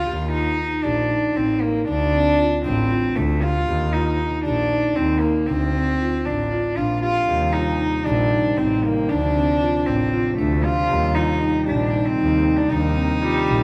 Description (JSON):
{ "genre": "contemporary instrumental, chamber music in an uneven meter", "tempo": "233 BPM (eighths)", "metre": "7/8", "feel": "straight", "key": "unclear", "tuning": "A4 = 440 Hz", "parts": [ { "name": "rich cello", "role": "melody", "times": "0.0-13.6 s", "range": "A3 to F4", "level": "-24 LUFS", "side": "equal", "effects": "none" }, { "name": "marimba with soft mallets", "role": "arpeggios", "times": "0.1-13.6 s", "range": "C4 to G4", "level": "-26 LUFS", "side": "equal", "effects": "none" }, { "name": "rich double bass", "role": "bass", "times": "0.1-13.6 s", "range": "A1 to Eb2", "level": "-26 LUFS", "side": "equal", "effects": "none" }, { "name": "chamber organ, sparkling flutes", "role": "sustained chords", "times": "7.3-13.6 s", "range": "C3 to D4", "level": "-31 LUFS", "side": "equal", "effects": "none" }, { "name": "warm viola", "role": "second line", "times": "13.2-13.6 s", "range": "G3", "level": "-24 LUFS", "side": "equal", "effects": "none" } ], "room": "moderate recital hall reverb, RT60 1.6 s", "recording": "none", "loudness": "-20 LUFS", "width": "mono", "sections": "0.1-13.6 A section", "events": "none", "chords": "0.1 Eb; 1.9 Dm7; 3.7 Eb; 5.5 Dm7; 7.3 Eb6; 9.1 Dm7; 10.9 Eb6" }